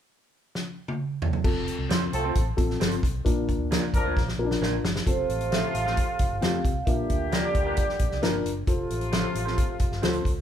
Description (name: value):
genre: uptempo 1960s-style soul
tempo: 133 BPM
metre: 4/4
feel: straight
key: F major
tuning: A4 = 443 Hz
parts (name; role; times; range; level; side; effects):
- natural country drum kit; drums; 0.6-10.4 s; crash cymbal, hi-hat, kick drum, snare drum, toms; -26 LUFS; equal; none
- dark upright piano; accompaniment; 1.4-10.3 s; Bb2 to C5; -30 LUFS; left 4 dB; none
- vintage muted fingered electric bass; bass; 1.4-10.4 s; F1 to F2; -32 LUFS; equal; none
- electric guitar through a small old amp; stabs; 1.9-10.2 s; A3 to C5; -34 LUFS; right 3 dB; none
- mellow horn section; second line; 2.1-10.2 s; C3 to Bb4; -32 LUFS; left 1 dB; none
- vibraphone with medium mallets; melody; 5.1-8.2 s; C5 to F5; -30 LUFS; right 4 dB; none
room: light reverb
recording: band playing live in one room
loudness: -23 LUFS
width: side -9 dB against mid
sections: 0.0-1.4 A section; 1.4-5.1 B section; 5.1-10.4 C section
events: drum fill 0.5-1.4, 4.2-5.1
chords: 0.0 N.C.; 1.4 F; 3.3 Bb; 5.1 F; 6.9 Bb; 8.7 F